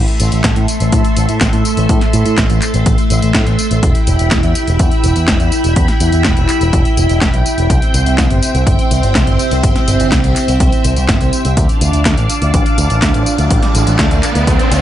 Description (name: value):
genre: italo disco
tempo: 124 BPM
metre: 4/4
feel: straight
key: A minor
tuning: A4 = 437 Hz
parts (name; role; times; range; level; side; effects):
- string machine, full ensemble; sustained chords; 0.0-14.8 s; A3 to C6; -17 LUFS; equal; ensemble chorus
- picked electric bass with an envelope filter; bass; 0.0-14.8 s; E1 to A2; -14 LUFS; equal; none
- house drum kit; drums; 0.1-14.8 s; handclaps, hi-hat, snare drum, tambourine; -19 LUFS; equal; studio reverb
- electronic kick drum; drums; 0.4-14.6 s; none; -15 LUFS; equal; studio reverb
- riser; sound effects; 12.7-14.8 s; none; -21 LUFS; right 2 dB; none
room: little or no reverb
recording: nothing above 10.8 kHz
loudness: -10 LUFS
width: side -12 dB against mid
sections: 0.0-14.8 A section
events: riser 12.7-14.8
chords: 0.0 Am; 3.8 Em; 7.7 C; 11.6 Dm